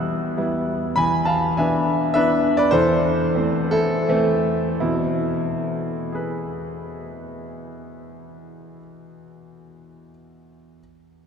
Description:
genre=classical, romantic triple-time dance for piano with dotted rhythms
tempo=77-109 BPM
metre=3/4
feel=rubato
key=unclear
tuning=A4 = 438 Hz
part: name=clear concert grand piano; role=solo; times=0.0-10.8 s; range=E2 to F#6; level=-20 LUFS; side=equal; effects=none
room=wet cathedral reverb, RT60 6.2 s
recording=none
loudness=-18 LUFS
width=side -7 dB against mid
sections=1.0-4.8 A section; 4.8-8.7 B section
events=slowing down 0.1-4.8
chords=0.0 Em; 1.0 E7; 2.7 Am/E; 4.8 E

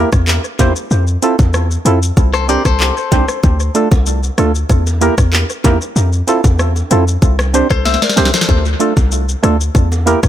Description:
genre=dancehall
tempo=95 BPM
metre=4/4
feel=straight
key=D minor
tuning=A4 = 443 Hz
part: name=percussive organ stab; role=accompaniment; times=0.0-10.2 s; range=A3 to C5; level=-16 LUFS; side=right 3 dB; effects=chorus, analog delay
part: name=hard-hitting 808-style bass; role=bass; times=0.0-10.3 s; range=C2 to F2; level=-14 LUFS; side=equal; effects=none
part: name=island pop drum kit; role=drums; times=0.1-10.3 s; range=handclaps, hi-hat, kick drum, rim click, shaker, snare drum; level=-15 LUFS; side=equal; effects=analog delay
part: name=bongos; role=percussion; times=0.3-10.1 s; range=none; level=-29 LUFS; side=right 4 dB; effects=none
part: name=clean electric guitar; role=arpeggios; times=2.3-3.4, 7.7-8.6 s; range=A4 to E5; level=-19 LUFS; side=left 8 dB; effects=analog delay
room=digital ambience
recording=echo-heavy mix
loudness=-11 LUFS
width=side -11 dB against mid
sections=0.0-10.3 A section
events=drum fill 7.9-8.5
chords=0.0 Edim; 0.9 Fmaj7; 2.2 Csus2; 3.4 Dm; 4.7 Edim; 6.0 Fmaj7; 7.2 Csus2; 8.5 Dm; 9.8 Edim

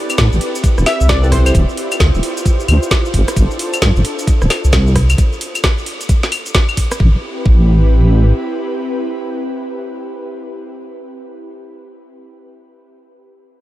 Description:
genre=UK garage, two-step garage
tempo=132 BPM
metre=4/4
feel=swing 62% on 16ths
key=A minor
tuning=A4 = 440 Hz
part: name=airy breathy pad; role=sustained chords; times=0.0-11.3 s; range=C4 to C5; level=-24 LUFS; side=equal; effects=chorus, sidechain pumping
part: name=garage drum kit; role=drums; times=0.1-7.0 s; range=claves, hi-hat, rim click, shaker, snare drum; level=-19 LUFS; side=equal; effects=overdrive, small room ambience
part: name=deep soft wobble bass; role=bass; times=0.2-8.3 s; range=D1 to A2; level=-11 LUFS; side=equal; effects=chorus
part: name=electronic kick drum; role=drums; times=0.2-7.6 s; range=none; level=-14 LUFS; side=equal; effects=overdrive, small room ambience
part: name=plucky unison lead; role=melody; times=0.9-1.5 s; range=C5 to E5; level=-24 LUFS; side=left 1 dB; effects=lush chorus, cassette tape, analog delay
part: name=tine electric piano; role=stabs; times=1.2-1.5 s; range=C4 to B4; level=-28 LUFS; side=equal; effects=none
room=light reverb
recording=none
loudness=-12 LUFS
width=side -15 dB against mid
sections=0.0-7.0 A section; 7.0-10.6 B section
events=none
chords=0.0 Am9; 1.5 Dm11; 3.1 G9sus4; 5.2 N.C.; 7.0 Am9

